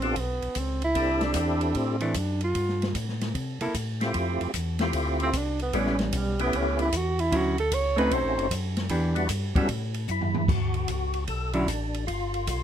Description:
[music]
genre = soul jazz organ trio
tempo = 151 BPM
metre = 4/4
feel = swing 66% on 8ths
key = D major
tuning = A4 = 442 Hz
[part]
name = dark tenor saxophone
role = melody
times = 0.0-8.5 s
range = E3 to C#5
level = -28 LUFS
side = right 2 dB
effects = none
[part]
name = percussive tonewheel organ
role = melody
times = 0.0-12.6 s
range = G3 to A4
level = -29 LUFS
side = left 1 dB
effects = slow rotary speaker, overdrive, chorus vibrato
[part]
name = mellow tonewheel organ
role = bass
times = 0.0-12.6 s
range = F#1 to C3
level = -30 LUFS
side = left 1 dB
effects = overdrive, chorus vibrato, slow rotary speaker
[part]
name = open jazz drum kit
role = drums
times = 0.0-12.6 s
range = crash cymbal, hi-hat, kick drum, ride cymbal, snare drum, toms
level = -31 LUFS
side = equal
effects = none
[part]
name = archtop guitar, miked and amplified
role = accompaniment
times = 2.0-11.7 s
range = D3 to A4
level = -27 LUFS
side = equal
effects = none
[sound]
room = light reverb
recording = none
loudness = -24 LUFS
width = side -9 dB against mid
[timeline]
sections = 0.0-10.5 A section; 10.5-12.6 B section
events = tenor saxophone solo 0.0-10.5; drum fill 10.1-10.5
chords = 0.0 G9; 1.0 C69; 2.6 Gsus2; 3.3 C6; 4.1 Fmaj9; 5.7 A9; 7.3 Dmaj9; 8.1 B7b9; 8.9 Em7; 9.7 A5; 10.5 Dmaj7; 12.1 G7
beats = 0.17 0.57 | 0.96 1.36 1.76 2.16 | 2.55 2.95 3.35 3.74 | 4.14 4.54 4.93 5.33 | 5.73 6.12 6.52 6.92 | 7.32 7.71 8.11 8.51 | 8.90 9.30 9.70 10.09 | 10.49 10.88 11.28 11.68 | 12.07 12.47

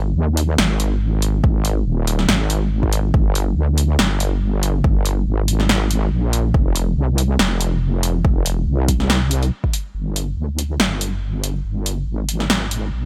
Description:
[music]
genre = deep dubstep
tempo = 141 BPM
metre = 4/4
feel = swing 54% on 16ths, half-time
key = G phrygian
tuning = A4 = 440 Hz
[part]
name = wobble bass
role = bass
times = 0.0-13.1 s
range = Eb1 to Eb2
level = -21 LUFS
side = equal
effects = chorus, tube saturation
[part]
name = deep house drum kit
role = drums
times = 0.4-12.8 s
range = hi-hat, snare drum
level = -22 LUFS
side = equal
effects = overdrive
[part]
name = electronic kick drum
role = drums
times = 1.4-9.7 s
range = none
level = -20 LUFS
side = equal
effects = overdrive
[sound]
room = little or no reverb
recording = none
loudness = -19 LUFS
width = mono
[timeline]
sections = 0.0-9.9 A section; 9.9-13.1 B section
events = build-up 9.9-13.1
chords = none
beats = 0.16 0.59 1.01 | 1.44 1.86 2.29 2.71 | 3.14 3.56 3.99 4.42 | 4.84 5.27 5.69 6.12 | 6.54 6.97 7.39 7.82 | 8.25 8.67 9.10 9.52 | 9.95 10.37 10.80 11.22 | 11.65 12.07 12.50 12.93

